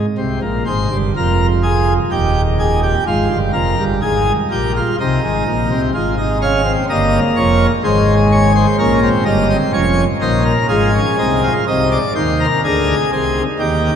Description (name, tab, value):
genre	classical, baroque-style 3-part fugue for pipe organ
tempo	62 BPM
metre	3/4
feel	straight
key	F minor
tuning	A4 = 440 Hz
part	pipe organ, plenum	solo	0.0-14.0 s	Eb1 to F5	-13 LUFS	equal	none
room	wet cathedral reverb, RT60 5.8 s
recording	minimal, uncompressed stereo recording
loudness	-13 LUFS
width	side -8 dB against mid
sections	0.0-14.0 A section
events	none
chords	0.2 C5; 2.1 Eb; 3.1 Fm; 5.0 Cm; 5.9 Fm/Ab; 7.8 Ab; 8.8 Bbm; 10.7 Fm/Ab; 11.7 Cm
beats	| 0.20 1.15 2.11 | 3.07 4.03 4.98 | 5.93 6.88 7.84 | 8.79 9.75 10.71 | 11.68 12.64 13.61